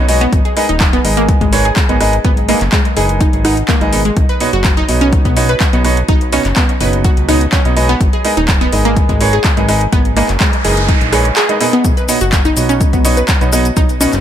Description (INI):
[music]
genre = progressive house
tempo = 125 BPM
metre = 4/4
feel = straight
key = unclear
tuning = A4 = 442 Hz
[part]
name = clear grand piano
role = stabs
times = 0.0-14.1 s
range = B2 to F#5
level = -17 LUFS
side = right 2 dB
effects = sidechain pumping, dub echo
[part]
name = fat analog bass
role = bass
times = 0.0-14.2 s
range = D#1 to C#2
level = -16 LUFS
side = equal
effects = sidechain pumping
[part]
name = deep house drum kit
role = drums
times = 0.1-14.2 s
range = handclaps, hi-hat, rim click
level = -19 LUFS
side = left 1 dB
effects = overdrive, small room ambience
[part]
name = wide unison pluck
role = arpeggios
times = 0.2-14.1 s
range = G#3 to B4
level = -17 LUFS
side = equal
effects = sidechain pumping, dub echo
[part]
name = electronic kick drum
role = drums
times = 0.3-13.9 s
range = none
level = -14 LUFS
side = equal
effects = overdrive, small room ambience
[part]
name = noise sweep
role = sound effects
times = 10.3-11.8 s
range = none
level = -22 LUFS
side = right 2 dB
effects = none
[part]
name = cabasa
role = percussion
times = 11.8-14.2 s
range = none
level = -22 LUFS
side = left 5 dB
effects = none
[sound]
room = digital ambience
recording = none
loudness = -10 LUFS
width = side -10 dB against mid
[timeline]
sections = 0.0-14.2 A section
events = noise sweep 10.3-11.8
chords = 0.3 G#madd9; 4.2 Badd9; 8.0 G#madd9; 11.8 Badd9